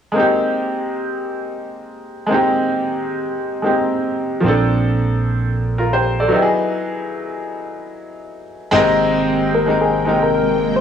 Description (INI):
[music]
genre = amapiano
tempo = 112 BPM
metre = 4/4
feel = swing 55% on 16ths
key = Ab major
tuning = A4 = 440 Hz
[part]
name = clear baby grand piano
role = accompaniment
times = 0.1-10.8 s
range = F3 to D5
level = -17 LUFS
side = equal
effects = cassette tape
[part]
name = fingered electric bass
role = bass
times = 4.4-10.8 s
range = Ab1 to Bb1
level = -21 LUFS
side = right 1 dB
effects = none
[part]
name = string machine, violas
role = sustained chords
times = 8.7-10.8 s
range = C3 to G5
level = -22 LUFS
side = equal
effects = ensemble chorus, cassette tape
[part]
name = soft struck synth lead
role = melody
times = 9.5-10.8 s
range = Ab4 to C5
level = -18 LUFS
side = left 3 dB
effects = chorus, cassette tape, tape echo
[sound]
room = light reverb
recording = home recording on cassette, studio ambience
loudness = -16 LUFS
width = side -8 dB against mid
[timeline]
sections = 0.2-8.7 A section; 8.7-10.8 B section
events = break 6.6-8.7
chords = 0.2 Abmaj9; 4.4 Bbmaj9; 6.3 Emaj9; 8.7 Abmaj9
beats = | 0.16 0.69 1.23 1.76 | 2.30 2.83 3.37 3.91 | 4.44 4.98 5.51 6.05 | 6.58 7.12 7.66 8.19 | 8.73 9.26 9.80 10.33